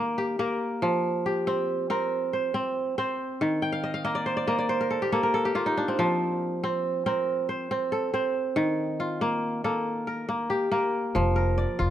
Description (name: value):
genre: west african traditional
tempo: 93 BPM (dotted quarters)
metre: 12/8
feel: straight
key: unclear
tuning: A4 = 440 Hz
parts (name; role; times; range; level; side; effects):
- kora; arpeggios; 0.0-11.9 s; Eb3 to G5; -25 LUFS; equal; none
- upright bass; bass; 11.2-11.9 s; F1; -24 LUFS; left 1 dB; none
room: light reverb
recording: close, detailed microphones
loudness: -24 LUFS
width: side -11 dB against mid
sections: 0.0-11.1 A section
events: kora fill 3.6-6.0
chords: 0.0 Eb; 0.8 F5; 3.4 Eb5; 6.0 F; 8.6 Eb; 11.1 N.C.